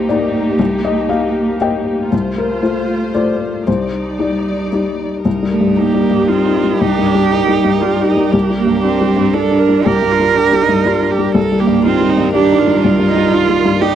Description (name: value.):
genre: neoclassical piano and strings.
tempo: 112-123 BPM.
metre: 3/4.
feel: rubato.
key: C dorian.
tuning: A4 = 440 Hz.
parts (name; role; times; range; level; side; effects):
felt-muted upright piano; accompaniment; 0.0-13.9 s; C2 to G5; -15 LUFS; left 4 dB; none.
rich chamber string section; sustained chords; 0.0-13.9 s; Eb3 to D5; -21 LUFS; right 2 dB; none.
rich cello; second line; 5.5-13.9 s; A3 to Bb4; -15 LUFS; right 8 dB; none.
warm viola; accompaniment; 5.8-13.9 s; D4 to Bb4; -19 LUFS; right 5 dB; none.
room: light reverb.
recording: dry, close 1970s-style studio recording.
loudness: -12 LUFS.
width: side -10 dB against mid.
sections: 0.0-5.3 A section; 5.3-13.9 A section.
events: none.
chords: 0.0 Cm7; 2.1 F/C; 3.7 Cmadd9; 5.3 Cm7; 8.3 Gm/C; 11.4 Cm7.